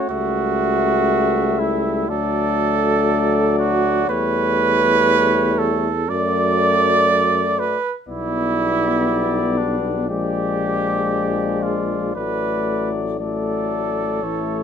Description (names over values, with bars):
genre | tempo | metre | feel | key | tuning
classical, brass quintet | 60 BPM | 4/4 | straight | D major | A4 = 438 Hz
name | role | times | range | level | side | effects
warm cornet | melody | 0.0-14.6 s | C#5 to E5 | -25 LUFS | left 10 dB | none
mellow trumpet | second line | 0.0-14.6 s | D4 to D5 | -20 LUFS | right 6 dB | none
warm French horn | accompaniment | 0.0-14.6 s | Ab3 to B3 | -25 LUFS | left 4 dB | none
warm trombone | accompaniment | 0.0-14.6 s | E3 to G3 | -30 LUFS | right 3 dB | none
warm bass trombone | bass | 0.1-14.6 s | A1 to F#2 | -24 LUFS | left 1 dB | none
room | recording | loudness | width
light reverb | none | -17 LUFS | side -8 dB against mid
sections
0.0-14.6 A section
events
none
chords
0.1 A7/C#; 2.1 D; 4.1 A7/E; 6.1 D/F#; 8.1 G/B; 10.1 Bb7; 12.2 D/A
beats
| 0.10 1.08 2.09 3.08 | 4.09 5.08 6.09 7.09 | 8.08 9.08 10.09 11.11 | 12.16 13.20 14.24